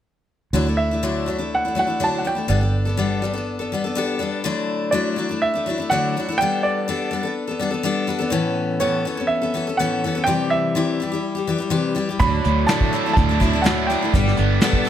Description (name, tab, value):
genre	folk rock and heartland rock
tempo	124 BPM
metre	4/4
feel	straight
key	D major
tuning	A4 = 441 Hz
part	picked steel-string acoustic guitar	accompaniment	0.5-14.9 s	A2 to A4	-22 LUFS	left 3 dB	none
part	fingered electric bass	bass	0.5-4.4, 12.2-14.6 s	G1 to D2	-21 LUFS	right 1 dB	none
part	dark grand piano	melody	0.8-14.6 s	C#5 to B5	-23 LUFS	right 2 dB	none
part	crunchy overdriven guitar	riff	12.2-14.9 s	D3 to A4	-23 LUFS	right 2 dB	none
part	soft brush drum kit	drums	12.2-14.9 s	hi-hat, kick drum, snare drum	-20 LUFS	right 1 dB	none
room	light reverb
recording	none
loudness	-18 LUFS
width	side -10 dB against mid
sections	0.5-4.4 A section; 4.4-14.9 B section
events	none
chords	0.5 Dadd9; 2.5 Gadd9; 4.4 Dadd9; 6.4 Gadd9; 8.3 Aadd9; 10.3 C; 12.2 Dadd9; 14.2 Gadd9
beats	| 0.54 1.02 1.51 2.00 | 2.49 2.98 3.47 3.96 | 4.45 4.93 5.42 5.91 | 6.39 6.88 7.37 7.85 | 8.34 8.82 9.31 9.79 | 10.28 10.76 11.24 11.73 | 12.21 12.70 13.18 13.67 | 14.15 14.63